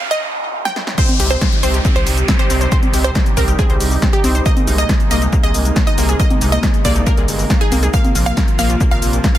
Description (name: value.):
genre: uplifting trance.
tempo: 138 BPM.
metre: 4/4.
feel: straight.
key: C minor.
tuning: A4 = 439 Hz.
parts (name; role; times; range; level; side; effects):
wide unison pluck; melody; 0.0-9.4 s; G4 to G5; -22 LUFS; right 2 dB; sidechain pumping, ping-pong delay.
noise sweep and downlifter; sound effects; 0.0-4.5 s; none; -25 LUFS; right 1 dB; none.
punchy analog drum machine; drums; 0.7-9.4 s; congas, crash cymbal, hi-hat, shaker, snare drum; -22 LUFS; equal; overdrive, sidechain pumping on hats, sidechain pumping on perc, sidechain pumping on cymbals.
filtered supersaw swell; sustained chords; 1.0-9.4 s; C3 to G4; -23 LUFS; right 2 dB; sidechain pumping.
wide unison pluck; arpeggios; 1.0-9.4 s; Bb3 to C5; -24 LUFS; left 3 dB; sidechain pumping, ping-pong delay.
electronic kick drum; drums; 1.0-9.3 s; none; -16 LUFS; equal; high-pass filter on kick.
gritty driven synth bass; bass; 1.2-9.2 s; G1 to C2; -17 LUFS; equal; tube saturation, sidechain pumping.
room: digital ambience.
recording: dense, heavily limited modern master, high-pass filter.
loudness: -12 LUFS.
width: side -13 dB against mid.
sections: 1.0-9.4 A section.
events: break 0.0-1.0; noise sweep 0.0-1.0; drum fill 0.7-1.0; drop 1.0-9.4.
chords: 0.0 N.C.; 1.0 Cm; 4.5 Abadd9/C; 7.9 Bbsus2.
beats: 0.11 0.55 | 0.98 1.41 1.85 2.28 | 2.72 3.15 3.59 4.02 | 4.46 4.89 5.33 5.76 | 6.20 6.63 7.07 7.50 | 7.94 8.37 8.81 9.24.